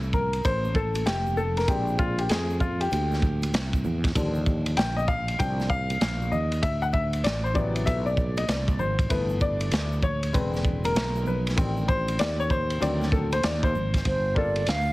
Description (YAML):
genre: hip hop, jazz-hop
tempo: 97 BPM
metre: 4/4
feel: swing 64% on 16ths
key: unclear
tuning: A4 = 440 Hz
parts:
  - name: warm upright piano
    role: accompaniment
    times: 0.0-14.6 s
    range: C3 to G5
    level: -28 LUFS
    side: left 2 dB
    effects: none
  - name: fretless electric bass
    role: bass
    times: 0.0-14.9 s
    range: E1 to F2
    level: -27 LUFS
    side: equal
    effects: none
  - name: egg shaker and congas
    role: percussion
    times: 0.0-14.1 s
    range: none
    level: -39 LUFS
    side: right 6 dB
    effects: none
  - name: crunchy breakbeat drum kit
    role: drums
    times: 0.1-14.9 s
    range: hi-hat, kick drum, ride cymbal, snare drum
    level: -28 LUFS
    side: equal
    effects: none
  - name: mellow silver concert flute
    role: melody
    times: 14.1-14.9 s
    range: C5 to F5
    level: -26 LUFS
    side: right 1 dB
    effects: none
room: light reverb, small room ambience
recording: heavily compressed radio sound, multiband compression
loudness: -23 LUFS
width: side -19 dB against mid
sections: 0.0-14.1 A section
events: upright piano solo 0.0-14.1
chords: 0.0 F; 1.7 Bb7; 4.2 Ebmaj7; 6.6 D13; 9.1 G6; 10.3 E7b13; 11.6 Am7b5; 12.8 D7b9; 14.1 Gm9